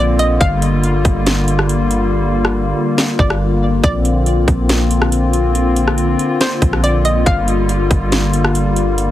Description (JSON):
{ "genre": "hip hop, atmospheric cloud-rap", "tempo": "140 BPM", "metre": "4/4", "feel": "half-time", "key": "unclear", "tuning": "A4 = 440 Hz", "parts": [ { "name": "hollow square pluck", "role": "melody", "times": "0.0-8.1 s", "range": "C5 to F5", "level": "-22 LUFS", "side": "equal", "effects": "chorus, tape echo" }, { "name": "hollow soft pad", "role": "sustained chords", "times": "0.0-9.1 s", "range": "D3 to F4", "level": "-16 LUFS", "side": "left 2 dB", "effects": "chorus, sidechain pumping" }, { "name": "warm 808-style bass", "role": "bass", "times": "0.0-9.1 s", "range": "G1 to Bb1", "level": "-17 LUFS", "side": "equal", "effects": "none" }, { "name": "trap drum kit", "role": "drums", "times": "0.2-9.1 s", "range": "hi-hat, kick drum, rim click, snare drum", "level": "-17 LUFS", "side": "equal", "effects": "overdrive" } ], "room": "digital ambience", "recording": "heavily compressed radio sound, multiband compression", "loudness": "-12 LUFS", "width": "side -13 dB against mid", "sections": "0.0-9.1 A section", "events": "hi-hats muted 2.1-3.8", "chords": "0.4 Gm7; 3.8 Bbadd9; 7.3 Gm7" }